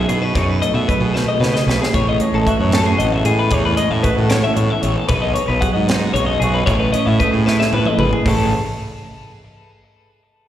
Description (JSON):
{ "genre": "math rock and midwest emo", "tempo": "76 BPM (dotted quarters)", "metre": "6/8", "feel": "straight", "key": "A lydian", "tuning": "A4 = 440 Hz", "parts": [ { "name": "twelve-string electric guitar", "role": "accompaniment", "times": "0.0-8.5 s", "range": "E2 to G#4", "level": "-20 LUFS", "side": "right 4 dB", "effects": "slapback echo" }, { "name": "twelve-string electric guitar", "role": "arpeggios", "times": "0.0-8.5 s", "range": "G#4 to F#5", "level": "-20 LUFS", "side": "left 5 dB", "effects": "tape echo, plate reverb, slapback echo" }, { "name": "fuzz fingered electric bass", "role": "bass", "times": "0.0-8.5 s", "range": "G#1 to B2", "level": "-19 LUFS", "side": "equal", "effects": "overdrive" }, { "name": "crisp fusion drum kit", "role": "drums", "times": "0.1-8.4 s", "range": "hi-hat, kick drum, snare drum, toms", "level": "-21 LUFS", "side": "equal", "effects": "none" } ], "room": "light reverb", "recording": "live gig heard through the venue's PA, recital hall reverb", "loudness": "-14 LUFS", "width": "side -11 dB against mid", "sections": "0.0-8.3 A section; 8.3-9.8 B section", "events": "drum fill 1.1-1.9, 7.5-8.3", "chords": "0.0 B13; 1.9 Amaj7; 5.1 B69; 6.7 Amaj9; 8.3 Amaj7", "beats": "| 0.36 1.15 | 1.94 2.73 | 3.52 4.31 | 5.10 5.89 | 6.68 7.47 | 8.26" }